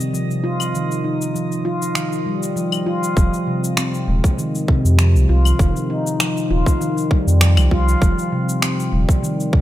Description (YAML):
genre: organic downtempo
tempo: 99 BPM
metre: 4/4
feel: swing 53% on 16ths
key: unclear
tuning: A4 = 441 Hz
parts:
  - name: handpan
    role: arpeggios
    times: 0.0-9.6 s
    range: C3 to F4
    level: -20 LUFS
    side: equal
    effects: low-pass filter, tape echo
  - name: electronic cabasa, claves and finger snaps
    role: drums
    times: 0.0-9.5 s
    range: none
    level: -24 LUFS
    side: left 1 dB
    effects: overdrive
  - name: drifting glass-harmonics texture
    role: texture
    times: 0.0-3.2 s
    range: Eb5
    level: -36 LUFS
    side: right 3 dB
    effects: chorus, built-in reverb
  - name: warm sub bass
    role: bass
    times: 3.2-9.1 s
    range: Eb1 to F2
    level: -15 LUFS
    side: equal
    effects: tube saturation, sidechain pumping
  - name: electronic kick drum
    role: drums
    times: 3.2-9.6 s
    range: none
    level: -17 LUFS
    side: equal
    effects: overdrive
room: light reverb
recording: none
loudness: -16 LUFS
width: side -14 dB against mid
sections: 0.0-3.2 A section; 3.2-9.6 B section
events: filter sweep on handpan 0.0-3.2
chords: 0.0 N.C.; 3.2 F7(no3); 8.0 Eb5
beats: 0.14 | 0.74 1.35 1.96 2.56 | 3.17 3.77 4.38 4.99 | 5.59 6.20 6.80 7.41 | 8.02 8.62 9.23